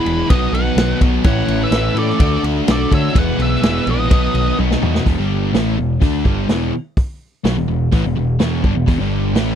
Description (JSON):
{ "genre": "classic rock", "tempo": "126 BPM", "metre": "4/4", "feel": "straight", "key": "unclear", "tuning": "A4 = 440 Hz", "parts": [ { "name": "octave-fuzz lead guitar", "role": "melody", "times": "0.0-4.6 s", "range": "B4 to F#5", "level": "-24 LUFS", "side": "equal", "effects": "distortion, tape echo" }, { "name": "fuzz lead guitar", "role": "second line", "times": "0.0-4.6 s", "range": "E4 to C#5", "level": "-26 LUFS", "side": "right 4 dB", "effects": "distortion, tape echo" }, { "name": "overdriven electric guitar", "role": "riff", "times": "0.0-9.6 s", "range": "E2 to F#4", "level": "-26 LUFS", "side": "equal", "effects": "none" }, { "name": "sludgy distorted guitar", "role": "riff", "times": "0.0-9.6 s", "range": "E2 to G#4", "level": "-22 LUFS", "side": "left 13 dB", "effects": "overdrive" }, { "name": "sludgy distorted guitar", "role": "riff", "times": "0.0-9.6 s", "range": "E2 to A4", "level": "-22 LUFS", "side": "right 11 dB", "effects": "overdrive" }, { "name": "growling picked electric bass", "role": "bass", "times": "0.1-9.6 s", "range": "E1 to D3", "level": "-20 LUFS", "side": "equal", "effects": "overdrive" }, { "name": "vintage drum kit", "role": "drums", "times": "0.1-9.5 s", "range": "hi-hat, kick drum, ride cymbal, snare drum, toms", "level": "-16 LUFS", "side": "equal", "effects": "none" } ], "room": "little or no reverb", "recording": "dry, close 1970s-style studio recording", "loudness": "-14 LUFS", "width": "side -9 dB against mid", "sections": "0.0-5.1 A section; 5.1-9.6 B section", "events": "drum fill 4.6-5.1", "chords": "0.3 B; 1.2 A; 2.2 D; 3.2 E; 4.1 B; 5.1 E5" }